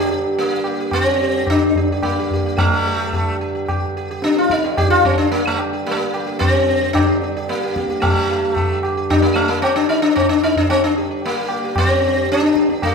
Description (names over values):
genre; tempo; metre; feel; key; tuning
indian classical, Hindustani; 111 BPM; 5/4; straight; G raga darbari; A4 = 439 Hz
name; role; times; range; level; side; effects
sitar; melody; 0.0-12.9 s; A3 to G4; -17 LUFS; left 1 dB; none
pedal harmonium; drone; 0.0-12.9 s; G2 to D3; -26 LUFS; right 1 dB; none
tabla; percussion; 0.4-12.9 s; none; -22 LUFS; equal; none
room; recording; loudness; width
wet recital hall reverb, RT60 1.6 s; minimal, uncompressed stereo recording; -15 LUFS; side -5 dB against mid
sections
0.0-12.9 A section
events
speeding up 0.0-12.9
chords
none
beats
0.36 0.92 1.47 2.02 | 2.58 3.13 3.68 4.23 4.77 | 5.32 5.86 6.41 6.95 7.49 | 8.03 8.56 9.10 9.63 10.17 | 10.70 11.23 11.76 12.29 12.81